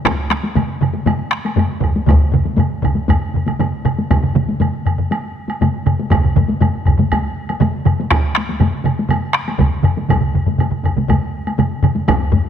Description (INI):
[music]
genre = japanese traditional, taiko drum ensemble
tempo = 120 BPM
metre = 4/4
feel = straight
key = none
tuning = none
[part]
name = taiko ensemble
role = percussion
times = 0.1-12.5 s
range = none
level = -22 LUFS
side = left 3 dB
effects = none
[part]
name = taiko ensemble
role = percussion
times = 0.1-12.4 s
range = none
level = -19 LUFS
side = left 3 dB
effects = none
[part]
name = taiko ensemble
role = percussion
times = 0.1-12.0 s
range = none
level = -20 LUFS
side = right 5 dB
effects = none
[part]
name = taiko ensemble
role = percussion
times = 0.1-12.2 s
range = none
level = -18 LUFS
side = right 1 dB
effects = none
[part]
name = woodblock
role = percussion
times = 0.1-12.2 s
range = none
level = -27 LUFS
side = right 3 dB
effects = none
[sound]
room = moderate concert hall reverb, RT60 1.9 s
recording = close, detailed microphones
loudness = -14 LUFS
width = side -8 dB against mid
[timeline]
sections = 0.0-12.1 A section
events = none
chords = none